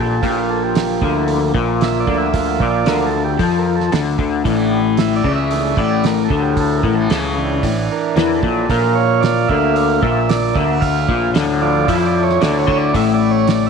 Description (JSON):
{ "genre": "psychedelic rock", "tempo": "113 BPM", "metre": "4/4", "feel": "straight", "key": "unclear", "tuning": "A4 = 440 Hz", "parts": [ { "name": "combo organ", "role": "sustained chords", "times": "0.0-13.7 s", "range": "E3 to F5", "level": "-19 LUFS", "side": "right 10 dB", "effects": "spring reverb" }, { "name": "electric guitar through a small old amp", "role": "riff", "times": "0.0-13.7 s", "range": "A2 to F3", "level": "-18 LUFS", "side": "left 10 dB", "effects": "rotary speaker" }, { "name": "growling picked electric bass", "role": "bass", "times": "0.0-13.7 s", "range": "A1 to F2", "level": "-22 LUFS", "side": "right 1 dB", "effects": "overdrive" }, { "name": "cloth-damped thuddy drum kit", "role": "drums", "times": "0.2-13.6 s", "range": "hi-hat, kick drum, snare drum", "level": "-22 LUFS", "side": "right 4 dB", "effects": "none" }, { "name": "tanpura", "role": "drone", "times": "4.4-13.7 s", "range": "A2 to E4", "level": "-26 LUFS", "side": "right 2 dB", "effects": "none" } ], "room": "moderate echo chamber reverb, RT60 1.5 s", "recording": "1960s-style stereo with parts hard left and right", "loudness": "-14 LUFS", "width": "side -6 dB against mid", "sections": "0.0-13.7 A section", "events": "transistor combo organ solo 0.0-13.7", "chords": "0.2 Bb5; 4.5 Asus4; 8.7 Bb5; 12.9 Asus4" }